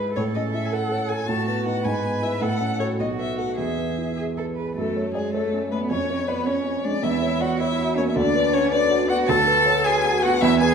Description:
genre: quick classical-period movement for piano trio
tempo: 106 BPM (dotted quarters)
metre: 6/8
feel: straight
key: E major, F# minor from 4.8 s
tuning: A4 = 441 Hz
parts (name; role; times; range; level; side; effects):
- rich cello; second line; 0.0-10.7 s; G#3 to B4; -27 LUFS; right 5 dB; none
- dark baby grand piano; accompaniment; 0.0-10.7 s; B1 to D5; -23 LUFS; right 1 dB; none
- rich violin; melody; 0.2-10.7 s; G#4 to A5; -24 LUFS; left 4 dB; none
room: wet recital hall reverb, RT60 1.5 s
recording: none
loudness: -20 LUFS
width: side -6 dB against mid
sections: 0.0-4.8 A section; 4.8-10.7 B section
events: none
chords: 0.2 F#m7/A; 1.3 B7/A; 1.9 E/G#; 2.4 F#m/A; 3.0 B5; 3.6 E; 4.8 F#m; 5.9 C#/E#; 7.0 F#7/E; 8.2 Bm/D

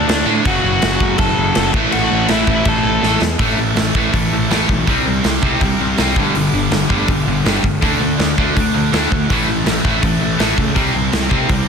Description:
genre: punk rock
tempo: 163 BPM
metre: 4/4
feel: straight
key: A major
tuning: A4 = 440 Hz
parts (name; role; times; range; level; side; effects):
- biting lead guitar; melody; 0.0-3.2 s; D4 to A5; -20 LUFS; left 1 dB; overdrive, tape echo
- cranked stack guitar; riff; 0.0-11.7 s; F#2 to D4; -21 LUFS; left 13 dB; overdrive
- distorted electric guitar; riff; 0.0-11.7 s; F#2 to D4; -21 LUFS; right 14 dB; distortion
- distorted electric guitar; riff; 0.0-11.7 s; F#2 to D4; -21 LUFS; right 1 dB; overdrive
- fuzz picked electric bass; bass; 0.0-11.6 s; F#1 to A2; -21 LUFS; equal; overdrive
- big rock drum kit; drums; 0.1-11.6 s; crash cymbal, hi-hat, kick drum, snare drum; -18 LUFS; equal; none
room: little or no reverb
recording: dense, heavily limited modern master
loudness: -13 LUFS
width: side -6 dB against mid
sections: 0.0-3.4 A section; 3.4-11.7 B section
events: drum fill 3.0-3.4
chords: 0.5 F#m; 1.7 A5; 4.9 C5; 6.2 G5; 7.8 D5; 9.3 A; 10.8 C5

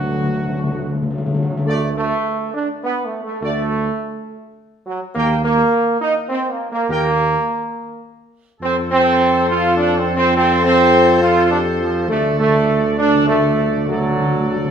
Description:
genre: classical, ceremonial fanfare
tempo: 103 BPM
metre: 3/4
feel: straight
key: unclear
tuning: A4 = 440 Hz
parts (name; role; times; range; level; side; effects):
- clear trumpet section; melody; 0.0-14.7 s; F#4 to G5; -27 LUFS; left 1 dB; none
- mellow French horn section; sustained chords; 0.0-14.6 s; F#3 to A4; -23 LUFS; left 5 dB; none
- warm trombone section; sustained chords; 0.0-14.7 s; F3 to F4; -17 LUFS; right 2 dB; none
- mellow tuba; bass; 0.0-14.7 s; D2 to F2; -22 LUFS; right 3 dB; none
- timpani; percussion; 0.0-1.6, 12.1-14.7 s; D3; -23 LUFS; left 2 dB; none
room: wet recital hall reverb, RT60 1.3 s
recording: none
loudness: -15 LUFS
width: side -7 dB against mid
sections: 0.0-1.7 A section; 1.7-14.7 B section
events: timpani fill 0.0-1.7, 12.1-14.7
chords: 0.0 D; 5.2 Eb; 8.6 F; 12.1 D

